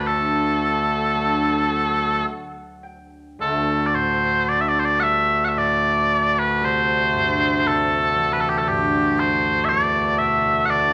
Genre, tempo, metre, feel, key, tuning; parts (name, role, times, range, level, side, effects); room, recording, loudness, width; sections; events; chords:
celtic folk, Celtic slow air; 52-60 BPM; 3/4; rubato; D mixolydian; A4 = 440 Hz
mellow small bagpipes; melody; 0.0-10.9 s; D2 to F#5; -20 LUFS; equal
concert harp; accompaniment; 0.0-10.9 s; C2 to G5; -30 LUFS; equal
wet large studio reverb, RT60 1.3 s; -20 LUFS; mono
0.0-3.4 A section; 3.4-10.9 A section
harp fill 1.1-3.4
0.1 D; 3.4 Dsus4; 6.6 C; 9.7 E7(no3)